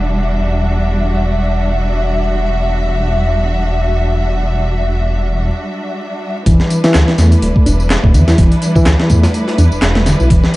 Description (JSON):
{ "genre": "breakbeat, breaks", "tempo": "125 BPM", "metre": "4/4", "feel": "swing 56% on 16ths", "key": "E minor", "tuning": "A4 = 441 Hz", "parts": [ { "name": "warm symphonic string section", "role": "sustained chords", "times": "0.0-10.6 s", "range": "G3 to E5", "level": "-19 LUFS", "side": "equal", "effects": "sidechain pumping" }, { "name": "detuned saw bass", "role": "bass", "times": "0.0-10.4 s", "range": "D1 to E2", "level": "-14 LUFS", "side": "equal", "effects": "none" }, { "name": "reed electric piano", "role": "riff", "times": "6.5-10.6 s", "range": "D3 to E4", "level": "-15 LUFS", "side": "equal", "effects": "fast tremolo, tape echo" }, { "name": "breakbeat sampler-style drum kit", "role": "drums", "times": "6.5-10.6 s", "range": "hi-hat, kick drum, snare drum", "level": "-13 LUFS", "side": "equal", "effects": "none" }, { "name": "electronic tambourine and handclaps", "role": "drums", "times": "6.5-10.6 s", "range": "none", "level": "-25 LUFS", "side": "left 1 dB", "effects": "none" } ], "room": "digital ambience", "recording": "dark, warm production, vinyl crackle, nothing above 10.9 kHz", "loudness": "-11 LUFS", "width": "side -18 dB against mid", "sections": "0.0-6.5 A section; 6.5-10.6 B section", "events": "break 5.5-6.5; drop 6.5-10.6", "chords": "0.0 Em7", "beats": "0.22 | 0.70 1.18 1.66 2.14 | 2.62 3.10 3.58 4.06 | 4.54 5.02 5.50 5.98 | 6.46 6.94 7.42 7.90 | 8.38 8.86 9.34 9.82 | 10.30" }